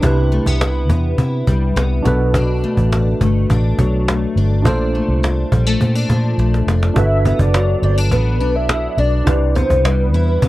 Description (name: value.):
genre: indie pop, bedroom pop.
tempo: 104 BPM.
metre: 4/4.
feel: straight.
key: G major.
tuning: A4 = 439 Hz.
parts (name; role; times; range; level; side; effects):
picked steel-string acoustic guitar; accompaniment; 0.0-10.5 s; Bb2 to E4; -21 LUFS; left 4 dB; analog chorus, vibrato effect.
tine electric piano; accompaniment; 0.0-10.5 s; D4 to C5; -24 LUFS; right 3 dB; medium stereo tremolo.
vintage muted fingered electric bass; bass; 0.0-10.5 s; F1 to C3; -16 LUFS; equal; none.
cajon; drums; 0.0-10.5 s; none; -19 LUFS; equal; none.
soft octave-layered synth lead; melody; 7.0-10.5 s; B4 to E5; -20 LUFS; equal; ensemble chorus.
room: little or no reverb.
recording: cassette tape.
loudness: -14 LUFS.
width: side -17 dB against mid.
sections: 0.0-7.0 A section; 7.0-10.5 B section.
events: drum fill 6.4-7.0.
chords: 0.0 Cmaj7; 2.1 Bm7; 4.7 Bbmaj7; 7.0 Gmaj7; 9.3 Cmaj7.